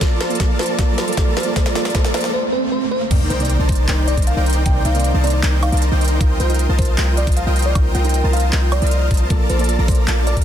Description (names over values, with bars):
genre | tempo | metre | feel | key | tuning
future bass | 155 BPM | 4/4 | half-time | Bb major | A4 = 441 Hz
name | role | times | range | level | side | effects
soft round pluck | accompaniment | 0.0-10.0 s | C3 to D5 | -27 LUFS | right 3 dB | ensemble chorus, vintage 12-bit sampler grit, sidechain pumping, digital delay
dense compressed supersaw | riff | 0.0-10.4 s | Eb4 to Bb5 | -23 LUFS | equal | sidechain pumping
electronic kick drum | drums | 0.0-10.4 s | none | -17 LUFS | equal | none
trap drum kit | drums | 0.0-10.4 s | crash cymbal, handclaps, hi-hat, snare drum, toms, woodblock | -25 LUFS | right 1 dB | high-pass filter on hats, high-pass filter on perc, high-pass filter on snare, high-pass filter on toms, high-pass filter on cymbals
riser, swell and sub drop | sound effects | 0.0-4.7 s | none | -25 LUFS | right 2 dB | none
bell-like FM electric piano | melody | 0.2-10.4 s | C5 to G5 | -26 LUFS | equal | chorus, sidechain pumping, ping-pong delay
warm 808-style bass | bass | 3.1-10.4 s | Bb1 to C2 | -17 LUFS | equal | sidechain pumping
room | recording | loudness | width
light reverb, digital ambience | dense, heavily limited modern master | -15 LUFS | side -10 dB against mid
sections
0.0-3.1 A section; 3.1-10.4 B section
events
build-up 0.0-3.1; drum fill 0.0-2.3, 2.8; riser 0.0-3.1; swell 2.3-3.1; drop 3.1-10.4; impact 3.1-4.7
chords
0.0 Bbmaj7; 3.1 Cm9; 6.2 F9sus4/C; 9.3 Bbmaj7